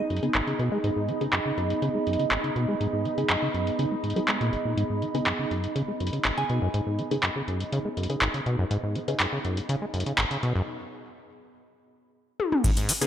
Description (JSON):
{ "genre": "acid house", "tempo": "122 BPM", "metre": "4/4", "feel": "straight", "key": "G# minor", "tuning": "A4 = 440 Hz", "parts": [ { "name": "soft synth bell", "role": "melody", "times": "0.0-0.1, 6.4-6.5 s", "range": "G#5", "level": "-35 LUFS", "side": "right 3 dB", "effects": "chorus, phaser, ping-pong delay" }, { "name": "lush unison pad", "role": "sustained chords", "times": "0.0-13.1 s", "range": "D#4 to G#4", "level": "-33 LUFS", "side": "right 2 dB", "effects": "chorus, phaser, sidechain pumping" }, { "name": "acid bass, saw", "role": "riff", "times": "0.0-13.1 s", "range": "G#1 to G#3", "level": "-28 LUFS", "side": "equal", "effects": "overdrive, digital delay" }, { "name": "warbly tape-like pad", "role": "texture", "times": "0.0-10.7 s", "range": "B3 to B5", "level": "-34 LUFS", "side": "right 2 dB", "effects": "chorus, built-in reverb, sidechain pumping" }, { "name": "electro analog drum machine", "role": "drums", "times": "0.1-13.1 s", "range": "cabasa, handclaps, hi-hat, ride cymbal, toms", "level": "-28 LUFS", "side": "equal", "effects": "low-pass filter on perc, low-pass filter on snare, low-pass filter on hats, low-pass filter on toms, low-pass filter on cymbals, low-pass filter on room, gated reverb" }, { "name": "filtered dub chord stab", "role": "stabs", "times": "0.2-13.1 s", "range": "B3 to G#4", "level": "-34 LUFS", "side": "left 2 dB", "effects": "phaser, digital delay" }, { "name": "electronic kick drum", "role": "drums", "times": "12.6-12.7 s", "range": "none", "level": "-24 LUFS", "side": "equal", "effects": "none" } ], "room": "moderate plate reverb, RT60 2.7 s", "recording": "bright 1980s-style digital production", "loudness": "-24 LUFS", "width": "side -10 dB against mid", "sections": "0.0-12.6 A section", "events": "filter sweep on acid bass 0.0-12.6; break 10.7-12.6; drum fill 12.4", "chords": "0.0 G#m", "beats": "0.35 | 0.84 1.33 1.82 2.31 | 2.81 3.30 3.79 4.28 | 4.77 5.26 5.76 6.25 | 6.74 7.23 7.72 8.22 | 8.71 9.20 9.69 10.18 | 10.68 11.17 11.66 12.15 | 12.64" }